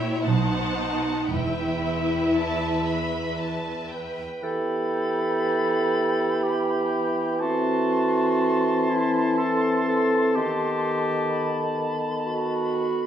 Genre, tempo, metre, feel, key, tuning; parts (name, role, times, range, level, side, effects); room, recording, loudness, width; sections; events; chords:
classical, slow romantic movement for symphony orchestra; 60 BPM; 3/4; uneven beats, rubato; E minor; A4 = 440 Hz
warm symphonic violin section; melody; 0.0-4.4 s; G5 to B5; -34 LUFS; left 2 dB
rich chamber violin section; second line; 0.0-4.2 s; B4 to F#5; -31 LUFS; equal
warm chamber viola section; accompaniment; 0.0-3.4 s; D#4 to E4; -26 LUFS; left 1 dB
rich chamber cello section; bass; 0.0-4.2 s; E2 to B2; -31 LUFS; right 3 dB
dark studio double bass section; bass; 0.3-2.3 s; E1 to B1; -28 LUFS; right 4 dB
clear clarinet; second line; 3.9-13.1 s; E4 to B4; -26 LUFS; right 1 dB
bright concert flute; second line; 4.4-13.1 s; B5 to C6; -33 LUFS; left 2 dB
mellow cor anglais; second line; 4.4-12.9 s; G5 to A5; -29 LUFS; right 3 dB
mellow bassoon; accompaniment; 4.4-12.9 s; D#3 to E3; -28 LUFS; right 2 dB
mellow French horn section; sustained chords; 4.4-13.1 s; B3 to A4; -28 LUFS; left 2 dB
wet recital hall reverb, RT60 1.3 s; studio reverb; -22 LUFS; side -9 dB against mid
0.0-4.4 A section; 4.4-13.1 B section
0.3 B7b9; 1.3 Em; 7.4 F#m7b5/E; 10.4 B7/D#